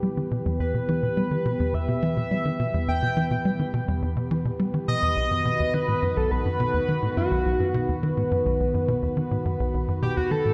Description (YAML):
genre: ambient, sequencer-driven space music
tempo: 105 BPM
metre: 4/4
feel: straight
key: E harmonic minor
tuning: A4 = 440 Hz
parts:
  - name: pulse-width lead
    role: melody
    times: 0.0-10.5 s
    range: F#4 to G5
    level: -30 LUFS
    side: equal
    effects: chorus, tape echo
  - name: sweeping resonant pad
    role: sustained chords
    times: 0.0-10.5 s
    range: D#3 to B4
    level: -31 LUFS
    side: equal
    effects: lush chorus
  - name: tight sequencer bass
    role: riff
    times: 0.0-10.5 s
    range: B1 to G3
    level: -28 LUFS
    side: equal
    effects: analog chorus, tape echo
room: wet echo chamber reverb, RT60 2.4 s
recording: echo-heavy mix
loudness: -25 LUFS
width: mono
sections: 0.0-10.5 A section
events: none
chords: 0.0 Em; 5.2 B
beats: 0.03 | 0.60 1.17 1.74 2.31 | 2.88 3.46 4.03 4.60 | 5.17 5.74 6.31 6.88 | 7.46 8.03 8.60 9.17 | 9.74 10.31